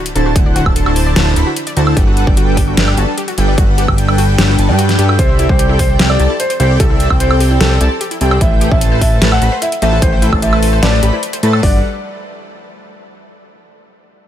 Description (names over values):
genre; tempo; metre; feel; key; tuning
future bass; 149 BPM; 4/4; half-time; G major; A4 = 440 Hz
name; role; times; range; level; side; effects
wide unison pluck; arpeggios; 0.0-11.8 s; E4 to D5; -26 LUFS; left 2 dB; sidechain pumping, ping-pong delay
dubstep drum kit; drums; 0.1-11.6 s; hi-hat, snare drum, woodblock; -18 LUFS; equal; overdrive
airy dreamy lead; arpeggios; 0.2-11.8 s; E5 to B5; -25 LUFS; equal; chorus, sidechain pumping
soft supersaw; riff; 0.2-11.8 s; D3 to B5; -18 LUFS; equal; lush chorus, sidechain pumping
fat analog bass; bass; 0.2-11.8 s; D1 to A2; -13 LUFS; equal; sidechain pumping
dubstep drum kit; drums; 0.4-11.7 s; hi-hat, kick drum; -14 LUFS; equal; overdrive
warm concert grand piano; melody; 5.2-11.8 s; A4 to F#5; -20 LUFS; left 1 dB; sidechain pumping, ping-pong delay
room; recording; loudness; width
digital ambience; none; -10 LUFS; side -11 dB against mid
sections
0.0-11.6 A section; 11.6-13.2 B section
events
drop 0.0-11.6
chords
0.0 D7; 2.0 Gmaj7; 5.2 C6; 8.4 Am7; 11.6 Gmaj7(no3)